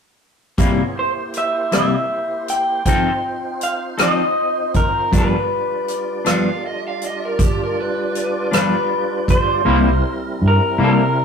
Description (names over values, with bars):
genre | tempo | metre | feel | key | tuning
slow blues | 53 BPM (dotted quarters) | 12/8 | straight | unclear | A4 = 440 Hz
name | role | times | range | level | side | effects
electric guitar at the edge of break-up | accompaniment | 0.6-11.0 s | G2 to A4 | -19 LUFS | left 2 dB | harmonic tremolo
tonewheel organ | sustained chords | 0.6-11.2 s | G3 to D5 | -26 LUFS | right 2 dB | slow rotary speaker, overdrive, chorus vibrato
natural country drum kit | drums | 0.6-9.5 s | hi-hat, kick drum, rim click | -19 LUFS | equal | none
electric guitar through a small old amp | melody | 1.0-11.2 s | Bb4 to G5 | -20 LUFS | equal | warbly pitch drift, slapback echo
overdriven slide guitar | second line | 6.3-8.5 s | G4 to F5 | -24 LUFS | right 1 dB | none
vintage muted fingered electric bass | bass | 9.7-11.2 s | C2 to C3 | -17 LUFS | equal | none
room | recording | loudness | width
moderate stone room reverb, RT60 1.0 s | rough rehearsal-room recording, tube saturation | -16 LUFS | side -6 dB against mid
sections
0.6-9.7 A section; 9.7-11.2 B section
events
none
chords
0.6 C7; 2.9 F7; 5.1 G7; 9.7 C7